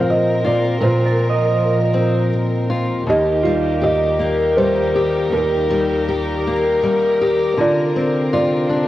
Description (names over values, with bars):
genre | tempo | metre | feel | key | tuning
acoustic folk-pop ballad | 80 BPM | 3/4 | straight | Eb major | A4 = 440 Hz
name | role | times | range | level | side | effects
felt-muted upright piano | melody | 0.0-8.9 s | F4 to F5 | -20 LUFS | right 2 dB | cassette tape
fingerpicked steel-string acoustic guitar | accompaniment | 0.0-8.9 s | Eb2 to G4 | -18 LUFS | left 2 dB | cassette tape
warm chamber string section | sustained chords | 0.0-8.9 s | Eb2 to Bb4 | -23 LUFS | right 1 dB | cassette tape
concert harp | arpeggios | 0.0-6.0 s | F4 to Eb5 | -26 LUFS | right 6 dB | cassette tape
room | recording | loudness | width
moderate lush hall reverb, RT60 2.8 s | home recording on cassette, vinyl crackle | -15 LUFS | side -14 dB against mid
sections
0.0-3.1 A section; 3.1-8.9 B section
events
none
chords
0.0 Bbsus2; 3.1 Eb; 7.6 Bbadd9